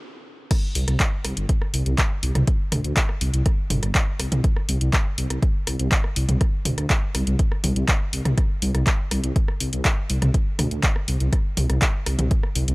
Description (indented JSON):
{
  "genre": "melodic techno",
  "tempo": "122 BPM",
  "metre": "4/4",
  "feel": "straight",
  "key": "unclear",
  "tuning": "A4 = 440 Hz",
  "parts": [
    { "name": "electronic kick drum", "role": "drums", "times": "0.5-12.4 s", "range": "none", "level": "-21 LUFS", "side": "equal", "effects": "none" },
    { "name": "punchy analog drum machine", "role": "drums", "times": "0.5-12.7 s", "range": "crash cymbal, handclaps, hi-hat, rim click, toms", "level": "-25 LUFS", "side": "equal", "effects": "none" },
    { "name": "swelling detuned saw bass", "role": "bass", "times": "0.8-12.7 s", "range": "G1 to D2", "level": "-22 LUFS", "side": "equal", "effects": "sidechain pumping" }
  ],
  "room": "little or no reverb",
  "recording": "dry, gritty hardware recording",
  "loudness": "-20 LUFS",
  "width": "side -25 dB against mid",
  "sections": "0.5-12.7 A section",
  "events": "stop 0.0-0.5; drop 0.5-12.7",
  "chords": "none"
}